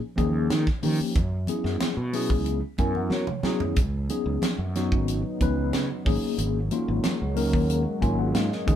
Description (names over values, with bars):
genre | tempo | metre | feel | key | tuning
electric jazz fusion | 92 BPM | 4/4 | straight | unclear | A4 = 440 Hz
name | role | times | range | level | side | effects
mellow tine electric piano | accompaniment | 0.2-8.8 s | F3 to Ab5 | -27 LUFS | left 2 dB | medium stereo tremolo
fretless electric bass | bass | 0.2-8.8 s | Ab1 to Gb3 | -27 LUFS | right 1 dB | none
tight funk drum kit | drums | 0.2-8.8 s | hi-hat, kick drum, snare drum, toms | -27 LUFS | right 1 dB | none
congas | percussion | 0.2-8.5 s | none | -35 LUFS | right 1 dB | none
deep dark ambient pad | sustained chords | 4.7-8.8 s | Db3 to Eb4 | -32 LUFS | left 1 dB | chorus, built-in reverb
room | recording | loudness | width
moderate studio reverb, RT60 0.6 s | band playing live in one room | -23 LUFS | side -10 dB against mid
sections
0.0-8.8 A section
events
tine electric piano fill 2.5-3.8, 7.7-8.8; drum fill 3.0-3.8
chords
0.0 Eb9sus4; 1.2 Gb9sus4; 3.8 Db9sus4; 6.1 Ab9sus4